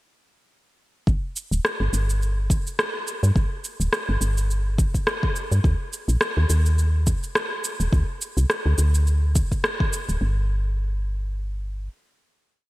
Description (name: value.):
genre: organic downtempo.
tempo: 105 BPM.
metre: 4/4.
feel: swing 56% on 16ths.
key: unclear.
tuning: A4 = 440 Hz.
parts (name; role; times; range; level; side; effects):
woody FM bass; bass; 1.1-11.9 s; D1 to G2; -21 LUFS; equal; sidechain pumping.
electronic kick drum; drums; 1.1-9.9 s; none; -22 LUFS; equal; none.
electronic shaker and rim click; drums; 1.1-10.2 s; none; -27 LUFS; equal; none.
room: light reverb.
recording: bright 1980s-style digital production.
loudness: -21 LUFS.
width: side -18 dB against mid.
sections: 1.1-10.2 groove; 10.2-12.5 final chord.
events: none.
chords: none.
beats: | 1.07 1.64 2.21 2.78 | 3.35 3.93 4.50 5.07 | 5.64 6.21 6.78 7.36 | 7.93 8.50 9.07 9.64 | 10.21 10.78 11.36.